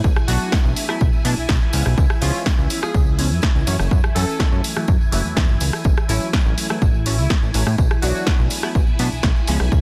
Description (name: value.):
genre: filtered disco house.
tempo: 124 BPM.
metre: 4/4.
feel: straight.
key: unclear.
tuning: A4 = 440 Hz.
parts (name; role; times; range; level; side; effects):
string machine, full ensemble; sustained chords; 0.0-9.8 s; E4 to G#5; -33 LUFS; equal; phaser, ensemble chorus, sidechain pumping.
plucky analog bass; bass; 0.0-9.8 s; F#1 to B2; -23 LUFS; equal; tube saturation, sidechain pumping.
electronic kick drum; drums; 0.0-9.8 s; none; -20 LUFS; equal; none.
tambourine; percussion; 0.0-9.8 s; none; -38 LUFS; equal; sidechain pumping on perc.
punchy analog drum machine; drums; 0.2-9.7 s; hi-hat, rim click, snare drum; -28 LUFS; equal; sidechain pumping on hats, sidechain pumping on cymbals.
warm horn section; melody; 0.3-8.4 s; E4 to A4; -31 LUFS; equal; sidechain pumping.
funky polysynth comp; accompaniment; 0.3-9.6 s; E3 to E#4; -30 LUFS; equal; chorus, phaser, sidechain pumping.
room: little or no reverb.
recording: dense, heavily limited modern master.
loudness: -19 LUFS.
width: mono.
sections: 0.0-9.8 A section.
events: none.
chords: 0.0 Bm7; 1.7 C#7; 3.7 F#m7; 5.8 A6; 7.8 Bm7.